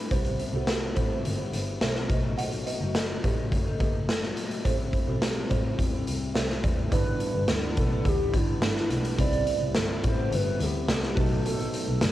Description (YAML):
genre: indie pop, bedroom pop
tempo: 106 BPM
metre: 4/4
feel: straight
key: G major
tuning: A4 = 444 Hz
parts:
  - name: electric guitar through a small old amp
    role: accompaniment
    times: 0.0-12.1 s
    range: G2 to B4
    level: -34 LUFS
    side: left 7 dB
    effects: analog chorus, warbly pitch drift, cassette tape
  - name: buzzing kalimba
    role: second line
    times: 0.1-6.8 s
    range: F#4 to F#5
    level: -36 LUFS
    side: right 6 dB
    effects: ensemble chorus, cassette tape, analog delay
  - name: warm double bass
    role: bass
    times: 0.1-12.1 s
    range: F#1 to E2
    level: -31 LUFS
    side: equal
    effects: none
  - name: raw garage drum kit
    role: drums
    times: 0.1-12.1 s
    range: hi-hat, kick drum, snare drum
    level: -27 LUFS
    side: equal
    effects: cassette tape
  - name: hollow clarinet-like synth lead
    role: melody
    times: 6.9-12.0 s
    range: E4 to D5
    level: -31 LUFS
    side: equal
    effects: phaser, wide subtle chorus, cassette tape, analog delay
  - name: soft electric-piano-like synth keys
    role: accompaniment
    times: 6.9-12.1 s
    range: F#3 to B4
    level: -34 LUFS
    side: right 7 dB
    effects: chorus, tremolo, cassette tape
room: light reverb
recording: home recording on cassette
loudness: -24 LUFS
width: side -14 dB against mid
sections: 0.0-6.9 A section; 6.9-12.1 B section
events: none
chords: 0.1 Cmaj7; 2.1 B7; 4.6 Am7; 6.9 G6; 9.2 Cmaj7; 11.2 B7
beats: | 0.11 0.68 1.25 1.81 | 2.38 2.95 3.52 4.08 | 4.65 5.22 5.78 6.35 | 6.92 7.48 8.05 8.62 | 9.18 9.75 10.32 10.88 | 11.45 12.02